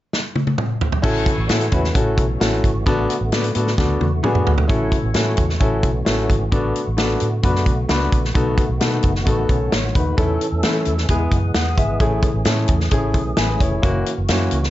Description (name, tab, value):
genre	uptempo 1960s-style soul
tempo	131 BPM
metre	4/4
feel	straight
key	A major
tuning	A4 = 438 Hz
part	natural country drum kit	drums	0.1-14.7 s	crash cymbal, hi-hat, kick drum, snare drum, toms	-20 LUFS	equal	none
part	warm grand piano	accompaniment	1.0-14.6 s	G#3 to G#5	-22 LUFS	left 2 dB	none
part	percussive tonewheel organ	sustained chords	1.0-14.7 s	D3 to A4	-28 LUFS	right 1 dB	fast rotary speaker, chorus vibrato
part	vintage muted fingered electric bass	bass	1.0-14.7 s	F1 to E3	-22 LUFS	equal	none
room	light reverb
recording	nothing above 7.7 kHz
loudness	-16 LUFS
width	side -14 dB against mid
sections	0.0-1.0 A section; 1.0-4.7 B section; 4.7-14.7 C section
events	drum fill 0.1-1.0, 3.8-4.7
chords	0.0 N.C.; 1.0 A6; 2.9 D6/A; 4.7 A6; 6.5 D6/A; 8.4 B7; 10.2 A/E; 11.1 E; 12.0 Amaj7; 13.8 F#7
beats	0.12 0.58 | 1.04 1.50 1.95 2.41 | 2.87 3.32 3.78 4.24 | 4.69 5.15 5.61 6.07 | 6.52 6.98 7.44 7.89 | 8.35 8.81 9.27 9.72 | 10.18 10.64 11.09 11.55 | 12.01 12.46 12.92 13.38 | 13.83 14.29